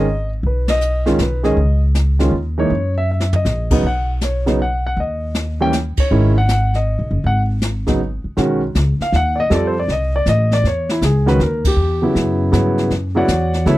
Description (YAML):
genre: jazz piano trio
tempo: 159 BPM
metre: 3/4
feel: swing 66% on 8ths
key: G# minor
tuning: A4 = 440 Hz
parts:
  - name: warm grand piano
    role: melody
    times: 0.0-13.8 s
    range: C#3 to G5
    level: -18 LUFS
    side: equal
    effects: none
  - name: upright bass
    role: bass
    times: 0.0-13.8 s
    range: F#1 to G2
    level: -18 LUFS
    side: equal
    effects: none
  - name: jazz brush drum kit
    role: drums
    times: 0.4-13.8 s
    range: brushed snare drum, crash cymbal, hi-hat, kick drum, ride cymbal, snare drum, toms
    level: -22 LUFS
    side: equal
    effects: none
room: little or no reverb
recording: dry, close 1970s-style studio recording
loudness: -15 LUFS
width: side -16 dB against mid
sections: 0.0-8.4 A section; 8.4-13.8 B section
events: band accent 0.6, 5.9, 11.6; drum fill 3.1-3.5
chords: 0.4 Badd9; 1.6 C#sus2; 2.7 F#6; 3.8 B5; 5.0 D#; 6.1 G#7(no3); 8.4 B; 9.5 F; 10.6 Emaj7; 11.8 Em69; 12.9 Dmaj9